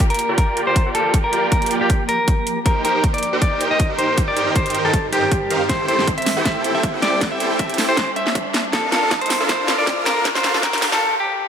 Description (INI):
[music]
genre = future bass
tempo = 158 BPM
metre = 4/4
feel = swing 54% on 16ths, half-time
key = G minor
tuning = A4 = 441 Hz
[part]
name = clean electric guitar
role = melody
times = 0.0-11.5 s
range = G4 to E5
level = -20 LUFS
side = left 1 dB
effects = sidechain pumping, dub echo
[part]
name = shimmering ambient pad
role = sustained chords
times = 0.0-11.0 s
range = G2 to A5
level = -30 LUFS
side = right 1 dB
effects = chorus, built-in reverb, sidechain pumping
[part]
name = supersaw chords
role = riff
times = 0.0-11.0 s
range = D4 to G5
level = -22 LUFS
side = right 1 dB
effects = sidechain pumping, low-pass filter
[part]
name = dubstep drum kit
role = drums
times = 0.0-11.0 s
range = hi-hat, snare drum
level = -23 LUFS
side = equal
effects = none
[part]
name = electronic kick drum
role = drums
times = 0.0-10.7 s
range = none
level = -19 LUFS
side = equal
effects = none
[part]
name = riser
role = sound effects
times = 0.0-11.0 s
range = none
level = -31 LUFS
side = equal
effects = none
[sound]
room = moderate huge ambient reverb, RT60 4.5 s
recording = high-pass filter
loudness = -16 LUFS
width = side -8 dB against mid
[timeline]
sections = 0.0-11.5 A section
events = build-up 0.0-11.5; filter sweep on supersaw synth 0.0-11.5; filter sweep on ambient pad 0.0-11.5; filter sweep 0.0-11.5; drum fill 5.7-11.0; break 11.0-11.5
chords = 0.0 Gm7; 2.7 Cm7/G; 5.7 Am7; 8.7 Bbmaj7